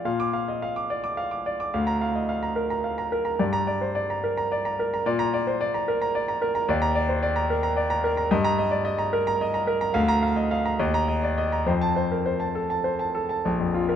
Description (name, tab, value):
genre	classical, virtuoso piano study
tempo	72 BPM (dotted quarters)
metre	6/8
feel	rubato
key	Bb major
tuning	A4 = 440 Hz
part	clear concert grand piano	solo	0.0-14.0 s	Bb1 to D6	-22 LUFS	equal	none
room	moderate concert hall reverb, RT60 2.4 s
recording	close, detailed microphones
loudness	-22 LUFS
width	side -9 dB against mid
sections	0.1-13.5 A section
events	none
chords	0.1 Bb; 1.7 Bb/D; 3.4 Gm; 5.0 Bbadd9; 6.7 Eb5; 8.3 Eb/G; 10.0 Bb/D; 10.8 Eb5; 11.7 F; 13.5 Bb5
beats	| 0.06 0.90 | 1.74 2.56 | 3.40 4.23 | 5.05 5.87 | 6.68 7.49 | 8.31 9.13 | 9.96 10.80 | 11.68 12.56 | 13.46